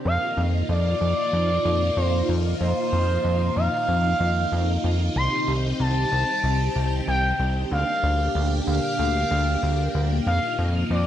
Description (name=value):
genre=synthwave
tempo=94 BPM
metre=4/4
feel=straight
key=unclear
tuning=A4 = 439 Hz
part: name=string machine, full ensemble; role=sustained chords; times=0.0-11.1 s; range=Bb3 to G4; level=-28 LUFS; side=equal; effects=phaser, ensemble chorus
part: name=expressive portamento lead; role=melody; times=0.1-11.1 s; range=C5 to C6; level=-25 LUFS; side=equal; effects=chorus, vintage 12-bit sampler grit, tape echo
part: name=fat analog bass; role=bass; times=0.1-11.1 s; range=C2 to F2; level=-23 LUFS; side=equal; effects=none
room=light reverb, digital ambience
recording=none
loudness=-20 LUFS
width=side -11 dB against mid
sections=0.1-11.1 A section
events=none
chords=0.1 F7sus4; 5.2 Cm; 7.7 Bb6/D; 10.3 F7sus4